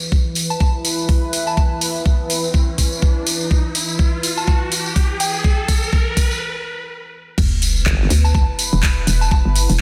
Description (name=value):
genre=bass house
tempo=124 BPM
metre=4/4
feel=swing 58% on 16ths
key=E minor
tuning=A4 = 442 Hz
part: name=sweeping resonant pad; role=sustained chords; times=0.0-9.8 s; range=E3 to B4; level=-29 LUFS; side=equal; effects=chorus, sidechain pumping
part: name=tambourine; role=percussion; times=0.0-9.8 s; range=none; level=-27 LUFS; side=equal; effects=none
part: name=riser and sub drop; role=sound effects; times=1.8-9.3 s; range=none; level=-29 LUFS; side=equal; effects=none
part: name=electronic kick drum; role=drums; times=0.1-9.4 s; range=none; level=-18 LUFS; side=equal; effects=overdrive, studio reverb
part: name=garage drum kit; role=drums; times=0.4-9.8 s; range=crash cymbal, handclaps, hi-hat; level=-28 LUFS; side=equal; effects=overdrive, studio reverb
part: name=soft synth bell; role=melody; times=0.5-9.4 s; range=G5 to A5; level=-30 LUFS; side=equal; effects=chorus, analog delay
part: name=hollow knocking FM bass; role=bass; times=7.4-9.8 s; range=E1 to D2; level=-19 LUFS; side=equal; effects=sidechain pumping
part: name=formant-sweep wobble bass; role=bass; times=7.9-8.1 s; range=G1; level=-20 LUFS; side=equal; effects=chorus, overdrive, sidechain pumping
room=light reverb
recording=none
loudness=-18 LUFS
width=mono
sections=0.0-7.4 A section; 7.4-9.8 B section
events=build-up 0.0-7.4; riser 1.8-6.4; drum fill 3.5-6.4; break 6.4-7.4; drop 7.4-9.8; impact 7.4-9.3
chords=0.0 E5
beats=0.12 0.60 1.09 | 1.57 2.06 2.54 3.02 | 3.51 3.99 4.47 4.96 | 5.44 5.93 6.41 6.89 | 7.38 7.86 8.35 8.83 | 9.31 9.80